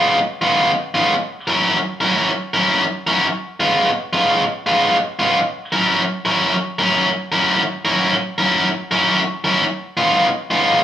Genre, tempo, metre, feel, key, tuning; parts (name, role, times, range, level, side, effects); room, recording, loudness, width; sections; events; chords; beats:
blues; 113 BPM; 4/4; swing 65% on 8ths; A4 = 440 Hz
overdriven electric guitar; solo; 0.0-10.8 s; Db3 to Bb4; -15 LUFS; equal
moderate stone room reverb, RT60 1.0 s; band playing live in one room, studio reverb; -15 LUFS; side -10 dB against mid
0.0-10.8 A section
0.0 Db7; 1.1 Gb7; 3.3 Db7; 5.4 Gb7; 9.6 Db7
0.07 0.60 | 1.13 1.67 2.20 2.73 | 3.26 3.79 4.32 4.86 | 5.39 5.92 6.45 6.98 | 7.51 8.04 8.57 9.10 | 9.63 10.16 10.69